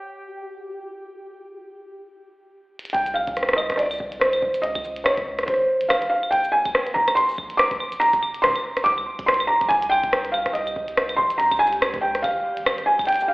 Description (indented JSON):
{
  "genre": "IDM",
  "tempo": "142 BPM",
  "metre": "4/4",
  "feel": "swing 56% on 16ths",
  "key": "C minor",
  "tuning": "A4 = 439 Hz",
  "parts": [
    { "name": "bubbling stepped-filter texture", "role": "texture", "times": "0.0-2.5, 10.3-13.3 s", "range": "G3 to G6", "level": "-38 LUFS", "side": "right 1 dB", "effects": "chorus, built-in reverb" },
    { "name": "glitchy drum kit", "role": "drums", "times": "2.8-13.3 s", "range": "claves, hi-hat, rim click, shaker", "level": "-24 LUFS", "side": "equal", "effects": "tape echo" },
    { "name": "felt-muted upright piano", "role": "melody", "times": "2.9-13.3 s", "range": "C5 to D6", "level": "-20 LUFS", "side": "equal", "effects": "digital delay" },
    { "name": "round analog bass", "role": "bass", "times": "2.9-13.3 s", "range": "F1 to Db2", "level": "-45 LUFS", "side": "equal", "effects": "none" },
    { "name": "electronic kick drum", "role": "drums", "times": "2.9-13.1 s", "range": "none", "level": "-37 LUFS", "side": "equal", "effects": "none" }
  ],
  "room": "moderate plate reverb, RT60 1.8 s, digital ambience",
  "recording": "played on a big sound system in a bare room, stone room reverb, telephone sound",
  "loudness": "-19 LUFS",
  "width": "side -23 dB against mid",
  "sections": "0.0-2.9 A section; 2.9-13.3 B section",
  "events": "drum fill 2.7",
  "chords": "0.0 N.C.; 2.9 C5; 4.6 Db5; 6.3 Bb5; 8.0 F5; 9.7 Cm; 11.4 Db"
}